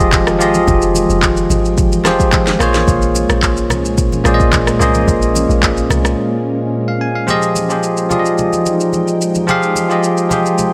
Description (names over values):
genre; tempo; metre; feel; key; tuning
amapiano; 109 BPM; 4/4; straight; F minor; A4 = 440 Hz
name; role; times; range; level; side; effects
bell-like tine electric piano; accompaniment; 0.0-10.7 s; F3 to Ab5; -17 LUFS; equal; none
ethereal airy pad; sustained chords; 0.1-10.7 s; Bb2 to G5; -24 LUFS; equal; ensemble chorus, built-in reverb, sidechain pumping
deep log drum bass; bass; 0.0-6.2 s; F1 to C2; -21 LUFS; equal; none
afro-pop drum kit; drums; 0.0-10.7 s; handclaps, kick drum, rim click, shaker, snare drum; -19 LUFS; equal; vintage 12-bit sampler grit
congas; percussion; 0.1-10.7 s; none; -28 LUFS; equal; none
room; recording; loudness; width
light reverb; none; -14 LUFS; mono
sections
0.0-7.3 A section; 7.3-10.7 B section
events
drop 0.0-7.3; break 6.2-7.3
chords
0.0 Fm9; 2.6 Bbm9; 7.3 Fm9